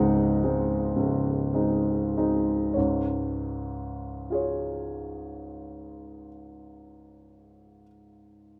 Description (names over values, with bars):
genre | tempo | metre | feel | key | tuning
classical, romantic nocturne for solo piano | 29-41 BPM (dotted quarters) | 12/8 | rubato | unclear | A4 = 440 Hz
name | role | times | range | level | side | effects
warm grand piano | solo | 0.0-8.6 s | Db1 to Gb5 | -28 LUFS | equal | none
room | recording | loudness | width
moderate recital hall reverb, RT60 1.5 s | close, detailed microphones | -27 LUFS | mono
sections
0.0-2.8 A section; 2.8-8.6 B section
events
slowing down 0.0-2.8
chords
0.0 Ab7/Db; 2.8 Db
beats
0.96 | 2.76 4.30 5.86 7.43